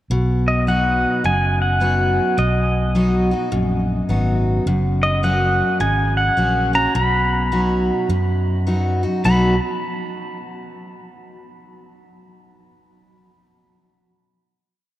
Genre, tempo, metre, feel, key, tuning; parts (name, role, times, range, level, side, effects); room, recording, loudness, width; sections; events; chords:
honky-tonk and classic country; 105 BPM; 4/4; swing 63% on 8ths; B major; A4 = 439 Hz
picked steel-string acoustic guitar; accompaniment; 0.1-9.5 s; F#2 to F#4; -21 LUFS; equal
fingered electric bass; bass; 0.1-9.6 s; F#1 to F#2; -20 LUFS; equal
pedal steel guitar; melody; 0.5-9.6 s; D#5 to B5; -21 LUFS; equal
wet cathedral reverb, RT60 5.6 s; in a vast, echoing space; -16 LUFS; side -14 dB against mid
0.1-9.2 A section; 9.2-11.5 final chord
0.1 B; 4.7 F#; 7.0 B